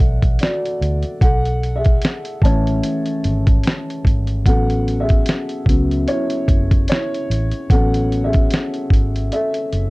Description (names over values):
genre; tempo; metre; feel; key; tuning
lo-fi hip hop; 74 BPM; 4/4; swing 57% on 16ths; A major; A4 = 438 Hz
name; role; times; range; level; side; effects
dark upright piano; accompaniment; 0.0-9.9 s; E3 to A5; -21 LUFS; left 1 dB; none
vintage muted fingered electric bass; bass; 0.0-9.9 s; F#1 to D2; -20 LUFS; equal; none
lo-fi sampler-style drum kit; drums; 0.2-9.9 s; hi-hat, kick drum, snare drum; -16 LUFS; equal; vintage 12-bit sampler grit
room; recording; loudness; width
light reverb; dark, warm production; -15 LUFS; side -23 dB against mid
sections
0.0-9.9 A section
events
upright piano solo 0.0-9.9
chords
0.0 D69; 1.2 B7sus4; 4.5 A69